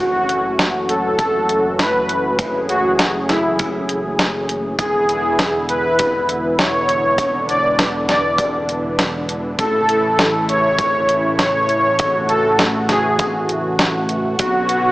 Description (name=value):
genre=synthwave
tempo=100 BPM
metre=4/4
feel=straight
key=F# minor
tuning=A4 = 439 Hz
part: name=soft supersaw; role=melody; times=0.0-14.9 s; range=E4 to D5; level=-17 LUFS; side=equal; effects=cassette tape, tape echo
part: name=brassy analog pad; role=sustained chords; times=0.0-14.9 s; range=C#3 to G#4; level=-23 LUFS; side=equal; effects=chorus, sidechain pumping
part: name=chorused synth bass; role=bass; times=0.0-14.9 s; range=E1 to B1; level=-28 LUFS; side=equal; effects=sidechain pumping
part: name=clean 12-bit digital drum machine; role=drums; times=0.3-14.8 s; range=hi-hat, snare drum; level=-19 LUFS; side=equal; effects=none
part: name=kick drum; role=drums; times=1.2-14.5 s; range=none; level=-26 LUFS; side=equal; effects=none
room=moderate lush hall reverb, RT60 2.1 s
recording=small speaker sound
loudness=-15 LUFS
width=side -18 dB against mid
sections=0.0-14.9 A section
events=none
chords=0.0 F#m7; 4.8 E7(no3); 9.6 A; 14.4 Bmadd9